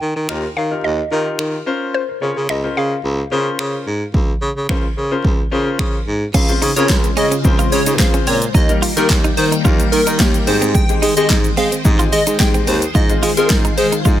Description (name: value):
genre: dance-pop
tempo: 109 BPM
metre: 4/4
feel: straight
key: unclear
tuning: A4 = 439 Hz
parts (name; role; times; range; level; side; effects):
- mallet-like synth pluck; melody; 0.0-5.8 s; C5 to G5; -23 LUFS; left 1 dB; chorus, ping-pong delay
- warm baritone saxophone; bass; 0.0-14.2 s; Db2 to Ab3; -19 LUFS; equal; sidechain pumping
- clear baby grand piano; accompaniment; 0.3-14.2 s; G3 to Db5; -22 LUFS; left 4 dB; sidechain pumping
- deep house drum kit; drums; 0.3-14.2 s; crash cymbal, finger snaps, handclaps, hi-hat, kick drum, shaker, snare drum; -16 LUFS; equal; none
- plucky unison lead; melody; 6.3-13.9 s; Bb4 to G5; -22 LUFS; equal; sidechain pumping, ping-pong delay
- phased string machine; sustained chords; 6.3-14.2 s; Db3 to G5; -23 LUFS; left 2 dB; ensemble chorus, phaser, sidechain pumping
- direct-recorded clean electric guitar; riff; 6.3-14.2 s; Ab3 to F4; -24 LUFS; right 5 dB; analog chorus
room: little or no reverb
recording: none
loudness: -14 LUFS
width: side -12 dB against mid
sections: 0.0-6.3 A section; 6.3-14.2 B section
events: drop 6.3-14.2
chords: 0.0 Ebadd9; 1.7 Bbmadd9/Db; 6.3 Dbmaj7; 8.5 Eb; 10.5 Abmaj7; 12.9 Fm7/Ab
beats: 0.29 0.84 1.39 | 1.94 2.49 3.04 3.59 | 4.14 4.69 5.24 5.79 | 6.34 6.89 7.45 8.00 | 8.55 9.10 9.65 10.20 | 10.75 11.30 11.85 12.40 | 12.95 13.50 14.05